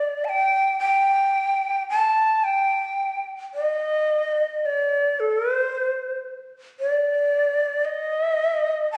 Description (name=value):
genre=japanese traditional, Japanese chamber music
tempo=55 BPM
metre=4/4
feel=rubato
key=unclear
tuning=A4 = 436 Hz
part: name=breathy bright shakuhachi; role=solo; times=0.0-9.0 s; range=C5 to A5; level=-23 LUFS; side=equal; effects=none
room=moderate recital hall reverb, RT60 1.7 s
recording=recorded on a phone in the room, studio reverb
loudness=-23 LUFS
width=mono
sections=0.0-9.0 A section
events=none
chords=none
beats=0.22 1.31 | 2.41 3.52 4.62 5.70 | 6.76 7.83 8.90